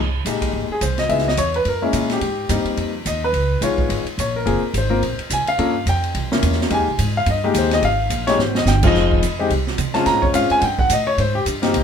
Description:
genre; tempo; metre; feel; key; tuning
jazz piano trio; 214 BPM; 4/4; swing 59% on 8ths; F minor; A4 = 440 Hz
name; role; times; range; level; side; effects
upright bass; bass; 0.0-11.8 s; F1 to C3; -22 LUFS; right 1 dB; none
clear grand piano; melody; 0.3-11.8 s; F2 to Bb5; -19 LUFS; left 2 dB; none
open jazz drum kit; drums; 0.3-11.8 s; crash cymbal, hi-hat, kick drum, ride cymbal, snare drum; -24 LUFS; right 2 dB; none
room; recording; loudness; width
light reverb; band playing live in one room; -17 LUFS; side -7 dB against mid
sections
0.0-8.9 A section; 8.9-11.8 A section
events
grand piano solo 0.0-11.8; drum fill 8.4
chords
0.0 Abmaj9; 1.1 Dbm7; 1.7 Gb9; 2.2 Abmaj7; 3.3 Db7; 4.5 Gbmaj9#11; 5.6 Gm7b5; 6.1 C7b9; 6.7 Fm11; 8.9 Fm7; 10.1 Bbm7; 10.6 A7(b5, no3)/G; 11.2 Abmaj9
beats
0.25 0.53 0.81 | 1.09 1.37 1.65 1.93 | 2.21 2.49 2.77 3.05 | 3.33 3.62 3.90 4.18 | 4.46 4.74 5.02 5.30 | 5.58 5.86 6.14 6.42 | 6.70 6.98 7.26 7.54 | 7.82 8.10 8.38 8.66 | 8.94 9.22 9.50 9.78 | 10.06 10.34 10.62 10.90 | 11.18 11.46 11.74

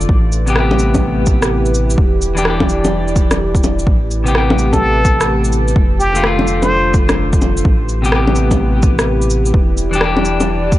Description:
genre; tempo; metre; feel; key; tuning
future garage; 127 BPM; 4/4; swing 64% on 16ths; A minor; A4 = 440 Hz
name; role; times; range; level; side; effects
clean electric guitar; accompaniment; 0.0-10.8 s; C3 to G4; -19 LUFS; left 2 dB; spring reverb, sidechain pumping, tape echo
dark analog pad; sustained chords; 0.0-10.8 s; A3 to D5; -21 LUFS; right 1 dB; chorus, sidechain pumping
soft dub sub bass; bass; 0.0-10.8 s; E1 to A1; -18 LUFS; equal; tube saturation, sidechain pumping
electronic shaker, cabasa, rim click and bongos; drums; 0.0-10.8 s; none; -18 LUFS; equal; none
electronic kick drum; drums; 0.1-10.8 s; none; -15 LUFS; equal; overdrive
trumpet with plunger mute; melody; 4.7-6.9 s; G4 to C5; -19 LUFS; equal; tape echo
room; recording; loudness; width
light reverb; cassette tape, nothing above 10.4 kHz; -11 LUFS; side -15 dB against mid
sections
0.0-10.8 A section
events
none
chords
0.1 Am9; 2.0 Em7; 3.9 Am9; 5.8 F6; 7.7 Am9; 9.5 Em7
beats
| 0.09 0.56 1.04 1.51 | 1.98 2.45 2.93 3.40 | 3.87 4.34 4.82 5.29 | 5.76 6.23 6.71 7.18 | 7.65 8.12 8.60 9.07 | 9.54 10.01 10.48

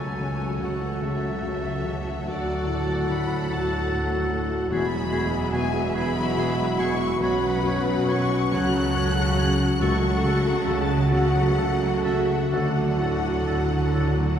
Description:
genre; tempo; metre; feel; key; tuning
cinematic, emotional film score for orchestra; 42-50 BPM (dotted quarters); 6/8; rubato; F# minor; A4 = 440 Hz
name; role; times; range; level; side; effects
rich studio violin section; melody; 0.0-14.4 s; D5 to F#6; -32 LUFS; left 4 dB; none
clear symphonic violin section; second line; 0.0-14.4 s; G#4 to F#5; -34 LUFS; left 2 dB; none
dark clarinet; second line; 0.0-14.1 s; F#4; -33 LUFS; left 1 dB; none
warm oboe; second line; 0.0-14.1 s; G#4 to C#5; -34 LUFS; equal; none
rich symphonic viola section; accompaniment; 0.0-14.4 s; F#3 to G#4; -30 LUFS; right 1 dB; none
warm baby grand piano; accompaniment; 0.0-14.4 s; B1 to F#4; -29 LUFS; equal; none
mellow French horn section; sustained chords; 0.0-14.4 s; G#3 to F#4; -29 LUFS; left 1 dB; none
clear symphonic double bass section; bass; 0.0-14.4 s; E1 to D2; -29 LUFS; right 2 dB; none
rich symphonic cello section; bass; 0.0-14.4 s; C#2 to D3; -29 LUFS; right 2 dB; none
timpani; percussion; 0.0-1.0, 9.8-11.1 s; C#3; -36 LUFS; right 1 dB; none
room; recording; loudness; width
wet cathedral reverb, RT60 4.9 s; recorded in a church or concert hall; -21 LUFS; side -8 dB against mid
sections
0.0-14.4 A section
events
none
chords
0.0 F#m/C#; 2.3 D; 4.7 Eadd9; 7.2 Bsus2; 9.8 F#m/C#; 12.5 D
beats
1.04 | 2.28 3.51 | 4.72 5.96 | 7.22 8.53 | 9.81 11.14 | 12.53 13.93

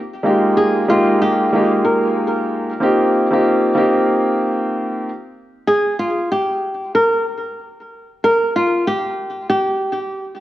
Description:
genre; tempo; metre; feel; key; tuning
hip hop, boom-bap hip-hop; 94 BPM; 4/4; swing 58% on 16ths; Eb major; A4 = 436 Hz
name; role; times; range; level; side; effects
dark baby grand piano; accompaniment; 0.2-5.1 s; Ab3 to G4; -15 LUFS; equal; high-pass filter, low-pass filter
flamenco guitar; melody; 0.6-10.0 s; F4 to Bb4; -18 LUFS; equal; high-pass filter, low-pass filter, digital delay
room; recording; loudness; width
moderate recital hall reverb, RT60 1.5 s; worn, warbling old tape, cassette tape, warbly pitch drift; -15 LUFS; side -14 dB against mid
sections
0.0-10.4 A section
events
break 5.4-10.4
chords
0.3 Fm11; 2.8 Eb69; 5.4 N.C.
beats
| 0.25 0.89 1.53 2.17 | 2.81 3.44 4.08 4.72 | 5.36 6.00 6.64 7.27 | 7.91 8.55 9.19 9.83

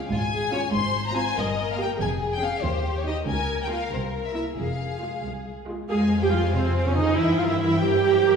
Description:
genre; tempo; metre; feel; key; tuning
quick classical-period movement for string orchestra; 94 BPM (dotted quarters); 6/8; straight; F minor; A4 = 440 Hz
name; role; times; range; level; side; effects
rich studio violin section; second line; 0.0-8.3 s; F4 to Ab5; -32 LUFS; left 4 dB; none
warm studio viola section; accompaniment; 0.0-8.4 s; Ab3 to Ab4; -25 LUFS; right 4 dB; none
rich studio violin section; melody; 0.1-8.4 s; C5 to C6; -29 LUFS; left 5 dB; none
rich studio double bass section; bass; 0.1-8.4 s; F1 to G2; -29 LUFS; equal; none
warm studio cello section; bass; 0.1-8.4 s; C2 to Ab3; -29 LUFS; equal; none
room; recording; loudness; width
wet scoring stage reverb, RT60 1.7 s; heard from further back in the room; -22 LUFS; side -6 dB against mid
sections
0.0-5.9 A section; 5.9-8.4 B section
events
none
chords
0.0 Db; 0.7 Fm/Ab; 1.4 Eb/G; 2.0 Db/F; 2.6 Cm/Eb; 3.3 Bbm/Db; 3.9 C7; 4.6 Fm; 7.2 C7/G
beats
0.11 | 0.74 1.37 | 2.00 2.63 | 3.27 3.92 | 4.58 5.24 | 5.89 6.54 | 7.17 7.81

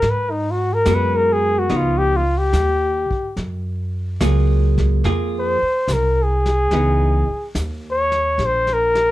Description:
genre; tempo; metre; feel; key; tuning
jazz ballad; 72 BPM; 4/4; swing 69% on 8ths; unclear; A4 = 436 Hz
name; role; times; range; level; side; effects
warm flugelhorn; melody; 0.0-9.1 s; Eb4 to Db5; -18 LUFS; left 1 dB; none
upright bass; bass; 0.0-9.1 s; Bb1 to Ab2; -20 LUFS; equal; none
vintage brush drum kit; drums; 0.0-9.1 s; brushed snare drum, hi-hat, kick drum, snare drum; -29 LUFS; left 1 dB; none
vintage hollow-body jazz guitar; accompaniment; 0.9-7.2 s; Fb3 to Bb4; -22 LUFS; right 2 dB; none
room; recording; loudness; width
light reverb; none; -16 LUFS; side -16 dB against mid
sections
0.0-9.1 A section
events
flugelhorn solo 0.0-9.1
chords
0.0 Abm9; 1.7 Db9; 3.4 Gbmaj9; 6.7 Dbm9; 8.4 N.C.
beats
| 0.02 0.86 1.69 2.53 | 3.37 4.21 5.05 5.88 | 6.72 7.56 8.39

